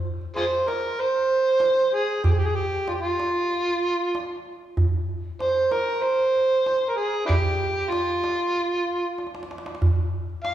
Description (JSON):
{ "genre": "Arabic maqam ensemble", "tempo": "95 BPM", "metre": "4/4", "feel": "straight", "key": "unclear", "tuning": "A4 = 440 Hz", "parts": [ { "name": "darbuka", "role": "percussion", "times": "0.1-10.5 s", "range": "none", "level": "-26 LUFS", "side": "right 1 dB", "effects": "none" }, { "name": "overdriven harmonica", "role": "melody", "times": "0.4-10.5 s", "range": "D4 to F5", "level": "-22 LUFS", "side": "right 1 dB", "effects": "none" } ], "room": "wet scoring stage reverb, RT60 1.8 s", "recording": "recorded in a church or concert hall, small room ambience", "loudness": "-21 LUFS", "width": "side -12 dB against mid", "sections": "0.0-10.5 A section", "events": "drum fill 9.2-9.8", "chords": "none", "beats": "0.36 0.99 1.62 | 2.25 2.88 3.51 4.14 | 4.77 5.40 6.03 6.66 | 7.29 7.92 8.55 9.18 | 9.81 10.44" }